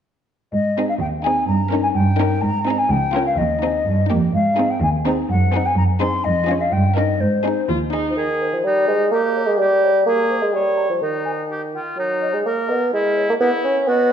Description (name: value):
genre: cinematic, playful, whimsical film cue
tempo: 126 BPM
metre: 2/4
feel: straight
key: Ab major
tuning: A4 = 436 Hz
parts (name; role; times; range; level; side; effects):
- mellow hollow silver concert flute; second line; 0.5-14.1 s; C5 to C6; -23 LUFS; left 3 dB; none
- warm chamber cello section; bass; 0.5-8.1 s; Db2 to Ab2; -20 LUFS; right 2 dB; none
- rich studio violin section; melody; 0.8-8.1 s; G4 to Bb4; -30 LUFS; left 6 dB; none
- rich chamber violin section; second line; 0.8-8.1 s; Eb4 to F4; -27 LUFS; left 4 dB; none
- warm chamber viola section; accompaniment; 0.8-8.2 s; Bb3 to F4; -26 LUFS; right 2 dB; none
- mellow bassoon; accompaniment; 8.1-14.1 s; Eb3 to C#4; -17 LUFS; right 1 dB; none
- clear oboe; second line; 8.2-14.1 s; Eb4 to Db5; -25 LUFS; equal; none
room: moderate scoring stage reverb, RT60 1.6 s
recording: dark, warm production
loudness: -16 LUFS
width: side -8 dB against mid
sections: 0.5-8.2 A section; 8.2-14.1 A section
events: none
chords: 0.5 Ab; 1.5 Eb7/G; 2.4 Ab; 2.9 Bbm/Db; 3.4 Ab/Eb; 3.9 Eb/G; 4.3 Ab; 5.3 Ab7/Gb; 6.2 Db/F; 6.7 Eb7/G; 7.2 Ab; 8.2 Ab5/Eb; 9.1 Gm; 10.1 N.C.; 10.5 Bbm (rootless); 11.0 N.C.; 12.0 D#5/F#; 12.9 C#m/G#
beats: | 0.54 1.02 | 1.49 1.96 | 2.44 2.91 | 3.39 3.87 | 4.35 4.82 | 5.29 5.77 | 6.24 6.71 | 7.20 7.68 | 8.17 8.64 | 9.12 9.60 | 10.07 10.54 | 11.02 11.51 | 11.99 12.46 | 12.94 13.41 | 13.89